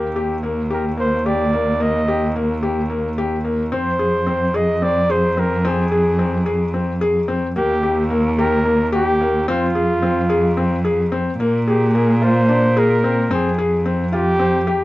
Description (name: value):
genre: contemporary instrumental, chamber music in an uneven meter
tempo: 219 BPM (eighths)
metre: 7/8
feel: straight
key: F dorian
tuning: A4 = 440 Hz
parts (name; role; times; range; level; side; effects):
- warm flugelhorn; melody; 0.0-14.8 s; F4 to Eb5; -20 LUFS; right 1 dB; none
- felt-muted upright piano; arpeggios; 0.0-14.8 s; Bb3 to Ab4; -21 LUFS; left 3 dB; none
- rich cello; bass; 0.0-14.8 s; Eb2 to Bb2; -19 LUFS; right 1 dB; none
room: light reverb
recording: dark, warm production, nothing above 11.0 kHz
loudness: -16 LUFS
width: side -17 dB against mid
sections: 0.0-11.4 A section; 11.4-14.8 B section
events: none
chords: 0.0 Eb; 3.7 Fm; 7.6 Eb; 9.5 Fm; 11.4 Bb7(no3); 13.3 Fmadd9